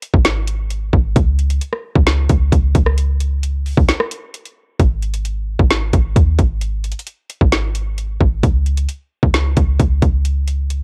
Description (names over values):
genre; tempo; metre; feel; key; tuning
hip hop, trap; 132 BPM; 4/4; half-time; unclear; A4 = 439 Hz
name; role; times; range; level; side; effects
trap drum kit; drums; 0.0-10.8 s; hi-hat, kick drum, rim click, snare drum; -18 LUFS; equal; cassette tape
clean 808-style bass; bass; 0.1-10.8 s; G#1 to D#2; -19 LUFS; equal; none
room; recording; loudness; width
digital ambience; home recording on cassette; -17 LUFS; mono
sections
0.0-4.8 A section; 4.8-10.8 B section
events
break 3.9-4.8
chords
none